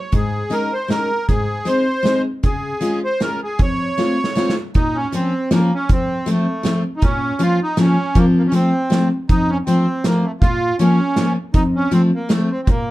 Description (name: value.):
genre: alpine folk, alpine dance band.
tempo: 158 BPM.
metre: 3/4.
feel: swing 54% on 8ths.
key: Bb harmonic minor from 4.8 s.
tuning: A4 = 441 Hz.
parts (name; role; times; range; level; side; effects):
accordion; melody; 0.0-12.9 s; A3 to Db5; -21 LUFS; right 1 dB; light tremolo tuning.
picked steel-string acoustic guitar; accompaniment; 0.1-12.9 s; F2 to F4; -18 LUFS; left 1 dB; none.
loose indie drum kit; drums; 0.1-12.8 s; hi-hat, kick drum, snare drum; -19 LUFS; right 1 dB; none.
room: moderate small room reverb, RT60 0.5 s.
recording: dark, warm production.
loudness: -15 LUFS.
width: side -16 dB against mid.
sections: 0.0-4.8 A section; 4.8-12.9 B section.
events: drum fill 4.0-4.8.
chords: 0.1 Absus4; 1.3 Ab; 2.4 Db; 3.6 F; 4.8 Bbm; 5.9 F; 7.0 Bbm; 8.2 Fsus4; 8.5 F; 10.4 Bbm; 11.5 F.